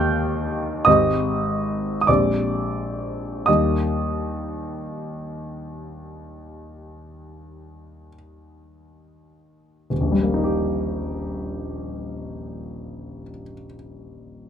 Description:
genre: classical, romantic nocturne for solo piano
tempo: 33-54 BPM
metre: 4/4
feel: rubato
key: Eb major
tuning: A4 = 438 Hz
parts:
  - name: clear grand piano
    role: solo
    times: 0.0-14.5 s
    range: Eb1 to G6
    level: -21 LUFS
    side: equal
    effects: none
room: light reverb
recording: close, detailed microphones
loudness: -20 LUFS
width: side -8 dB against mid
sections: 0.0-9.9 A section; 9.9-14.5 B section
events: slowing down 0.0-9.9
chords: 0.0 Eb; 0.9 Abmaj7; 2.1 Bb13; 3.5 Eb

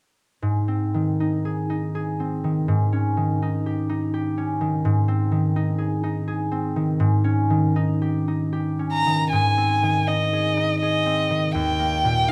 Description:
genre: classical, romantic duo for violin and harp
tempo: 74-85 BPM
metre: 3/4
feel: rubato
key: Ab major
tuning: A4 = 440 Hz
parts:
  - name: concert harp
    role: accompaniment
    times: 0.4-12.3 s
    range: Eb2 to Ab4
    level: -23 LUFS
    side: equal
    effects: none
  - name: warm violin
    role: melody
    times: 8.9-12.3 s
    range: Eb5 to Bb5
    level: -24 LUFS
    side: equal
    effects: none
room: light reverb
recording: close, detailed microphones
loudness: -23 LUFS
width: mono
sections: 0.4-9.3 A section; 9.3-12.3 B section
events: none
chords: 0.4 Ab; 2.7 Eb7/Ab; 4.9 Ab; 7.0 Eb7/Ab; 9.3 Ab; 11.6 Eb

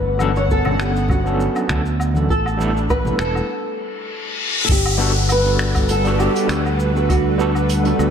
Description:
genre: sunset chillout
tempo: 100 BPM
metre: 4/4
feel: swing 54% on 16ths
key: unclear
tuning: A4 = 439 Hz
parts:
  - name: flamenco guitar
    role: melody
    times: 0.0-8.1 s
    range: F#4 to C#5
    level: -23 LUFS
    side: right 1 dB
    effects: lush chorus, analog delay
  - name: airy breathy pad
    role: sustained chords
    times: 0.0-8.1 s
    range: G3 to F#5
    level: -24 LUFS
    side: right 1 dB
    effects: chorus
  - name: modern bright fingered electric bass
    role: bass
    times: 0.0-8.1 s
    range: E1 to D2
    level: -20 LUFS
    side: equal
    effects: none
  - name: overdriven tine electric piano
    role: accompaniment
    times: 0.2-8.1 s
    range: F#3 to A4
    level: -24 LUFS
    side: moving between left 7 dB and right 6 dB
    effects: medium tremolo, auto-pan, analog delay
  - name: vintage brush drum kit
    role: drums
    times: 0.2-8.1 s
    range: cabasa, finger snaps, hi-hat, woodblock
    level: -28 LUFS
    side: equal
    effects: none
  - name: congas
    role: percussion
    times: 0.2-3.2 s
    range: none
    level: -29 LUFS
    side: left 2 dB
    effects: none
  - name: electronic kick drum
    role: drums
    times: 0.5-7.2 s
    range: none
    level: -21 LUFS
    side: equal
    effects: none
  - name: reverse cymbal and downlifter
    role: sound effects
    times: 4.0-8.1 s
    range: none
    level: -24 LUFS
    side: left 3 dB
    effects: none
room: moderate plate reverb, RT60 1.8 s, small room ambience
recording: dreamy mix soaked in reverb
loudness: -16 LUFS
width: side -7 dB against mid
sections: 0.0-4.7 A section; 4.7-8.1 B section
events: break 3.5-4.7; reverse cymbal 4.0-4.7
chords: 0.0 Gmaj9#11; 2.3 A7sus4; 4.7 Gmaj7

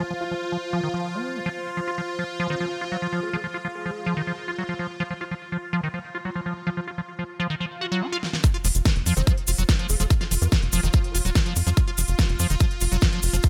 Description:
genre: psychedelic trance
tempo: 144 BPM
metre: 4/4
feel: straight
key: unclear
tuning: A4 = 441 Hz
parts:
  - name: evolving wavetable pad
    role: sustained chords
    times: 0.0-13.5 s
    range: F4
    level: -36 LUFS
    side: equal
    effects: phaser, built-in reverb, sidechain pumping
  - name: liquid acid bass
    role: riff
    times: 0.0-13.5 s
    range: Eb3 to Gb4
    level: -31 LUFS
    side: equal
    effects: chorus, sidechain pumping, tape echo
  - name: warbly tape-like pad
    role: texture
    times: 0.0-8.0 s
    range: F4 to F5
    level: -39 LUFS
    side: equal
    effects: chorus, built-in reverb, sidechain pumping
  - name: vowel-sweep wobble bass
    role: second line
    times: 2.5-4.2, 9.2-11.2 s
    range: F3 to C4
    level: -42 LUFS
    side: equal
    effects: ensemble chorus, sidechain pumping, high-pass filter, delay
  - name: swell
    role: sound effects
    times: 7.7-8.4 s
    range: none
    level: -38 LUFS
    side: equal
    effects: none
  - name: big-room dance drum kit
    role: drums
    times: 8.2-13.5 s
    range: hi-hat, snare drum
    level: -31 LUFS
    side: equal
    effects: none
  - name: electronic kick drum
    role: drums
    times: 8.4-13.5 s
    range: none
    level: -23 LUFS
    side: equal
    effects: none
  - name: cabasa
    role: percussion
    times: 8.4-13.5 s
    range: none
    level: -33 LUFS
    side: equal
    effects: none
  - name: tight sequencer bass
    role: bass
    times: 8.6-13.4 s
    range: Eb1 to F2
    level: -25 LUFS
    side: equal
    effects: none
room: light reverb, digital ambience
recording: none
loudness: -25 LUFS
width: mono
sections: 0.0-8.4 A section; 8.4-13.5 B section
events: swell 7.7-8.4; drum fill 8.2; drop 8.4-13.5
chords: 0.0 F5

